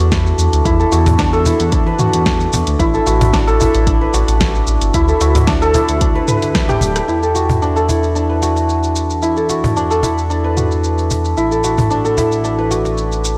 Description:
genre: organic downtempo.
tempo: 112 BPM.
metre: 4/4.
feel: swing 53% on 16ths.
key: unclear.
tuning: A4 = 439 Hz.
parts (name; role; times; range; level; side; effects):
santur; arpeggios; 0.0-13.4 s; D4 to B4; -18 LUFS; equal; low-pass filter, analog delay.
smooth synth bass; bass; 0.0-13.4 s; D1 to E2; -20 LUFS; equal; sidechain pumping.
deep house drum kit; drums; 0.0-13.4 s; hi-hat, rim click, shaker, snare drum, toms; -23 LUFS; equal; none.
cajon; percussion; 0.0-13.0 s; none; -24 LUFS; equal; none.
electronic kick drum; drums; 0.1-6.7 s; none; -21 LUFS; equal; none.
room: light reverb, digital ambience.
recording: dry, gritty hardware recording, transformer saturation, cassette tape.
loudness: -15 LUFS.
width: mono.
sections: 0.0-7.1 A section; 7.1-13.4 B section.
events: drum fill 6.5-7.1.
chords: 0.0 E5; 2.8 Asus2; 4.9 Dsus24; 7.1 E5; 11.4 Asus2.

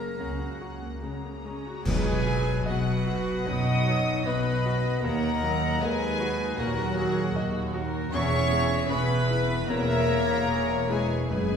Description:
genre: cinematic, emotional film score for orchestra.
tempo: 76 BPM.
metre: 4/4.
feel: uneven beats, rubato.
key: B major.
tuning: A4 = 443 Hz.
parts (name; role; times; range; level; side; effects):
warm symphonic violin section; melody; 0.0-11.6 s; C#5 to D#6; -34 LUFS; left 4 dB; none.
bright clarinet; second line; 0.0-1.0 s; A#4; -39 LUFS; left 6 dB; none.
warm symphonic violin section; second line; 0.0-11.6 s; F#4 to A#5; -35 LUFS; left 3 dB; none.
bright concert grand piano; accompaniment; 0.0-11.6 s; B1 to D#5; -32 LUFS; left 1 dB; none.
warm symphonic viola section; accompaniment; 0.0-11.6 s; G#3 to D#5; -33 LUFS; equal; none.
rich symphonic cello section; bass; 0.0-11.6 s; D#2 to A#3; -34 LUFS; right 3 dB; none.
warm symphonic double bass section; bass; 0.2-11.6 s; E1 to D#2; -31 LUFS; right 1 dB; none.
silver concert flute; second line; 1.9-11.6 s; A#4 to F#5; -33 LUFS; left 1 dB; none.
mellow French horn section; sustained chords; 1.9-11.6 s; F#3 to D#4; -31 LUFS; equal; none.
clash cymbals and concert bass drum; percussion; 1.9-3.4 s; none; -34 LUFS; equal; none.
timpani; percussion; 1.9-3.0, 11.3-11.6 s; F#2 to B2; -34 LUFS; right 1 dB; none.
room: wet scoring stage reverb, RT60 1.9 s.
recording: heard from further back in the room.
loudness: -24 LUFS.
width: side -7 dB against mid.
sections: 0.0-1.9 A section; 1.9-11.6 B section.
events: band accent 1.9-2.7.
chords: 0.0 F#add9; 1.9 B; 5.0 D#m; 8.1 E.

